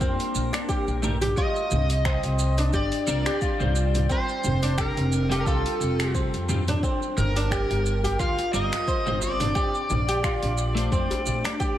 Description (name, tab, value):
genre	organic downtempo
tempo	88 BPM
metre	4/4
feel	swing 55% on 16ths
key	C dorian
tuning	A4 = 444 Hz
part	overdriven slide guitar	melody	0.0-11.8 s	A4 to F5	-30 LUFS	equal	analog delay, shimmer reverb
part	clean electric guitar	accompaniment	0.0-11.8 s	G3 to C5	-33 LUFS	left 2 dB	analog chorus, sidechain pumping, analog delay, shimmer reverb
part	oud	arpeggios	0.0-11.8 s	C4 to G4	-29 LUFS	equal	analog delay, shimmer reverb
part	upright bass	bass	0.0-11.4 s	F1 to F2	-26 LUFS	equal	none
part	deep house drum kit	drums	0.0-11.8 s	finger snaps, hi-hat, shaker, toms	-31 LUFS	right 1 dB	none
part	electronic kick drum	drums	0.0-11.8 s	none	-28 LUFS	equal	none
part	djembe	percussion	7.4-11.4 s	none	-36 LUFS	left 1 dB	none
room	moderate plate reverb, RT60 2.6 s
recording	dreamy mix soaked in reverb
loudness	-22 LUFS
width	side -12 dB against mid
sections	0.0-11.8 A section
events	none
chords	0.0 Bbadd9; 1.4 Cm; 4.1 F; 6.8 Gm7; 9.6 Bbadd9